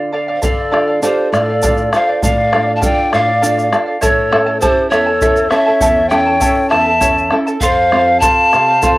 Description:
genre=andean folk, Andean ensemble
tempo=67 BPM (dotted quarters)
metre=6/8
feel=straight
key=unclear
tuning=A4 = 440 Hz
part: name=charango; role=accompaniment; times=0.0-9.0 s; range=E4 to A5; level=-18 LUFS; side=right 1 dB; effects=cassette tape
part: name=nylon-string guitar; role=accompaniment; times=0.0-9.0 s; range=E2 to A4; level=-20 LUFS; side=right 1 dB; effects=cassette tape
part: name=breathy pan flute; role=melody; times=0.4-9.0 s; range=C5 to A5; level=-14 LUFS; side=equal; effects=cassette tape
part: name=mellow large quena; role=second line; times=0.4-9.0 s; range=G4 to F5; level=-20 LUFS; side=left 2 dB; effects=cassette tape
part: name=bombo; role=percussion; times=0.4-9.0 s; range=none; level=-19 LUFS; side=equal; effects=none
part: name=egg shaker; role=percussion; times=0.4-9.0 s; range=none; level=-26 LUFS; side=right 2 dB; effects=none
room=wet booth ambience, RT60 0.2 s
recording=home recording on cassette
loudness=-11 LUFS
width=side -19 dB against mid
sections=0.4-9.0 A section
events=break 0.0-0.4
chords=0.4 Dm; 4.0 A; 7.6 F

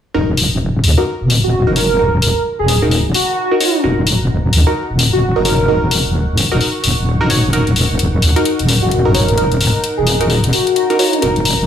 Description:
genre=bass house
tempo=130 BPM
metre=4/4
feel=swing 60% on 16ths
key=Eb minor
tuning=A4 = 440 Hz
part: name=band-passed chord stab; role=stabs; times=0.1-11.4 s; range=Eb4 to Db5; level=-19 LUFS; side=right 1 dB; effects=phaser, digital delay
part: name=wobble bass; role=bass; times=0.1-11.7 s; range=Eb1 to Eb2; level=-14 LUFS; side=equal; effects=chorus, overdrive
part: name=granular cloud pad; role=texture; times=2.3-11.7 s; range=Eb4 to Db6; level=-26 LUFS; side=left 1 dB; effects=built-in reverb
part: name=electronic hi-hat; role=drums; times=0.4-11.6 s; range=none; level=-18 LUFS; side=left 3 dB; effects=none
part: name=airy dreamy lead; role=melody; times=1.4-5.9, 8.8-11.2 s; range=Gb4 to Bb4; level=-18 LUFS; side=equal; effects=chorus, digital delay
room=light reverb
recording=studio reverb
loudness=-12 LUFS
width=side -9 dB against mid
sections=0.1-11.7 A section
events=fade-in on ambient pad 0.1-11.7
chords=0.1 Ebm

